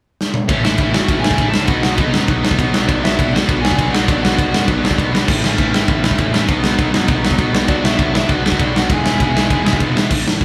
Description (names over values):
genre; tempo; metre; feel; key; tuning
punk rock; 200 BPM; 4/4; straight; unclear; A4 = 440 Hz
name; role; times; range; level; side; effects
big rock drum kit; drums; 0.2-10.4 s; crash cymbal, hi-hat, kick drum, ride cymbal, snare drum, toms; -18 LUFS; equal; none
bluesy overdriven lead guitar; melody; 0.5-4.7, 7.7-9.8 s; C#4 to A5; -25 LUFS; equal; distortion
distorted electric guitar; riff; 0.5-10.4 s; E2 to B3; -24 LUFS; equal; distortion
distorted electric guitar; riff; 0.5-10.1 s; A2 to E4; -24 LUFS; equal; distortion
fuzz picked electric bass; bass; 0.5-10.4 s; E1 to F#2; -25 LUFS; equal; overdrive
room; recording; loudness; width
light reverb; band playing live in one room; -16 LUFS; mono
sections
0.5-10.1 A section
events
drum fill 0.2-0.5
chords
0.5 A; 1.7 B; 2.7 Bm; 5.3 A; 6.5 B; 7.5 Bm; 8.9 E